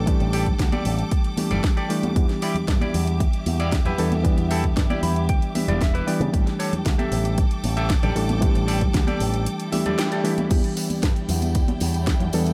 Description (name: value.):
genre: nu-disco, nu disco.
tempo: 115 BPM.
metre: 4/4.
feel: straight.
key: E minor.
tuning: A4 = 442 Hz.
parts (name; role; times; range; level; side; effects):
bright reed electric piano; accompaniment; 0.0-12.5 s; E3 to A4; -28 LUFS; equal; sidechain pumping, low-pass filter, tape echo.
rich studio violin section; sustained chords; 0.0-12.5 s; E4 to D6; -38 LUFS; equal; sidechain pumping.
picked electric bass with an envelope filter; bass; 0.0-12.5 s; E1 to C#3; -27 LUFS; equal; sidechain pumping.
electronic kick drum; drums; 0.1-12.2 s; none; -24 LUFS; equal; overdrive.
house drum kit; drums; 0.1-12.5 s; crash cymbal, hi-hat, snare drum; -34 LUFS; equal; overdrive.
semi-hollow electric guitar; riff; 0.2-10.5 s; E4 to B5; -32 LUFS; equal; subtle chorus, tape echo.
congas and tambourine; percussion; 0.5-12.5 s; none; -34 LUFS; equal; none.
swell; sound effects; 9.6-10.5 s; none; -40 LUFS; equal; none.
room: digital ambience.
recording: none.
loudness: -22 LUFS.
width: mono.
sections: 0.0-10.5 A section; 10.5-12.5 A section.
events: clean electric guitar fill 4.8-6.3, 9.5-10.5; swell 9.6-10.5; band accent 10.0; filter sweep on reed electric piano 10.5-12.5.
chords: 0.0 A7sus4; 2.2 Em7; 6.3 A7sus4; 10.5 Em7.